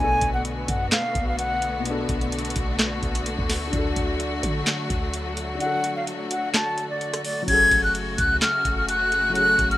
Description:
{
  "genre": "hip hop, trap",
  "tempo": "128 BPM",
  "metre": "4/4",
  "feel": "half-time",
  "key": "F# minor",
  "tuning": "A4 = 440 Hz",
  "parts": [
    { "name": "concert flute", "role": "melody", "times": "0.0-1.8, 5.6-9.8 s", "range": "D5 to G#6", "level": "-21 LUFS", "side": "left 1 dB", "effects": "digital delay" },
    { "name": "dark concert grand piano", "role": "accompaniment", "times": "0.0-9.8 s", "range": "B2 to A4", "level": "-32 LUFS", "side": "left 2 dB", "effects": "none" },
    { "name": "rich symphonic string section", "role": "sustained chords", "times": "0.0-9.8 s", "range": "C#3 to F#4", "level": "-29 LUFS", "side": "left 1 dB", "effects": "none" },
    { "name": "clean 808-style bass", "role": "bass", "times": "0.0-9.8 s", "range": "F#1 to D3", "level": "-31 LUFS", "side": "equal", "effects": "none" },
    { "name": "booming analog drum machine", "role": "drums", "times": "0.2-9.8 s", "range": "crash cymbal, handclaps, hi-hat, kick drum, rim click, snare drum", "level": "-26 LUFS", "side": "equal", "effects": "none" }
  ],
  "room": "small room ambience",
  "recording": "rough home demo mix",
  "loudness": "-21 LUFS",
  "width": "side -15 dB against mid",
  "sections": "0.0-7.5 A section; 7.5-9.8 B section",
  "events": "break 1.9-5.6; kick muted 5.6-7.5",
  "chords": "0.0 Bm7; 3.7 D; 7.5 F#madd9",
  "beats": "0.45 0.92 1.39 | 1.85 2.32 2.79 3.26 | 3.73 4.20 4.67 5.14 | 5.61 6.07 6.54 7.01 | 7.48 7.95 8.42 8.89 | 9.36"
}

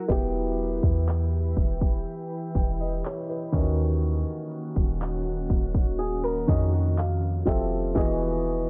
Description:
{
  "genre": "contemporary R&B",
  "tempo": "61 BPM",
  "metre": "4/4",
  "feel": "straight",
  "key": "unclear",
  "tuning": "A4 = 440 Hz",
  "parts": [
    { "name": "felt-muted upright piano", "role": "accompaniment", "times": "0.0-8.7 s", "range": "D#3 to G5", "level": "-32 LUFS", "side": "equal", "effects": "none" },
    { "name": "glassy FM pad", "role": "sustained chords", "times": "0.0-8.7 s", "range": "D#3 to B4", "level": "-36 LUFS", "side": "equal", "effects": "ensemble chorus, built-in reverb" },
    { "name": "soft 808-style bass", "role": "bass", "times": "0.1-8.7 s", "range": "D#1 to E#2", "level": "-29 LUFS", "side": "equal", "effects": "none" },
    { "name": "trap drum kit", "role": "drums", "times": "0.1-8.7 s", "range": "handclaps, hi-hat, kick drum", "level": "-28 LUFS", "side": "equal", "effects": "vintage 12-bit sampler grit" },
    { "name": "fingerpicked swing-style acoustic guitar", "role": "arpeggios", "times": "6.0-7.2 s", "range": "F#4 to A#4", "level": "-34 LUFS", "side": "equal", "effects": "tape echo" }
  ],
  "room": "little or no reverb",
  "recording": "low-pass filter",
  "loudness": "-26 LUFS",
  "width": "mono",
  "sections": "0.1-8.7 A section",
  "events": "felt piano fill 6.0-8.0",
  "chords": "0.1 Em; 3.5 D#m7; 7.0 Fmaj9; 8.0 Emaj9",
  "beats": "| 0.09 1.07 2.06 3.04 | 4.03 5.01 5.99 6.98 | 7.96"
}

